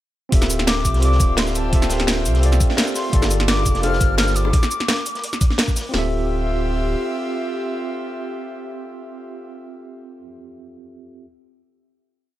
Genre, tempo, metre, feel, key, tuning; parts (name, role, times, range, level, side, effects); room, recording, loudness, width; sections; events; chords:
liquid drum and bass; 171 BPM; 4/4; swing 53% on 16ths; D minor; A4 = 441 Hz
tine electric piano; accompaniment; 0.3-11.3 s; Bb3 to E5; -27 LUFS; right 1 dB; fast stereo tremolo, ping-pong delay
airy breathy pad; sustained chords; 0.3-9.5 s; Bb3 to E5; -30 LUFS; right 1 dB; chorus, sidechain pumping
sub bass with octave; bass; 0.3-7.0 s; D1 to C2; -20 LUFS; equal
crunchy breakbeat drum kit; drums; 0.3-5.8 s; hi-hat, snare drum; -29 LUFS; equal; high-pass filter on hats, high-pass filter on snare, high-pass filter on room
drum and bass drum kit; drums; 0.3-6.0 s; kick drum, snare drum; -18 LUFS; equal
drum and bass drum kit; drums; 0.3-5.8 s; cabasa, hi-hat, snare drum; -22 LUFS; equal
breathy jazz flute; melody; 0.7-5.6 s; A5 to F6; -27 LUFS; left 2 dB; tape echo
bongos; percussion; 3.2-4.5 s; -30 LUFS; left 4 dB
studio reverb; -17 LUFS; side -14 dB against mid
0.3-5.9 drop; 5.9-8.7 final chord
drop 0.3-5.9
0.3 Dm11; 3.1 Gm9; 4.5 N.C.; 5.9 Dm11